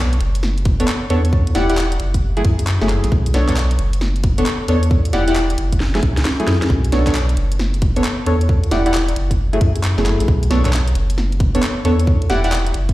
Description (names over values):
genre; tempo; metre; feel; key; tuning
UK garage, two-step garage; 134 BPM; 4/4; swing 65% on 16ths; B dorian; A4 = 440 Hz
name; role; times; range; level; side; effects
saturated sub bass; bass; 0.0-12.9 s; E1 to F#2; -17 LUFS; equal; none
garage drum kit; drums; 0.1-12.9 s; handclaps, hi-hat, snare drum; -25 LUFS; equal; overdrive
electronic kick drum; drums; 0.7-12.9 s; none; -17 LUFS; equal; overdrive
deep mellow chord stab; stabs; 0.8-12.5 s; F#3 to F#5; -20 LUFS; equal; chorus, tape echo
room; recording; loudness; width
light reverb; played on a big sound system in a bare room, large studio reverb; -14 LUFS; side -16 dB against mid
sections
0.0-12.9 A section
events
drum fill 5.8-6.7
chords
0.0 Bm9; 1.3 Em9; 2.0 F#m9; 3.1 Bm9; 4.9 Em9; 5.6 F#m9; 6.7 Bm9; 8.5 Em9; 9.2 F#m9; 10.3 Bm9; 12.1 Em9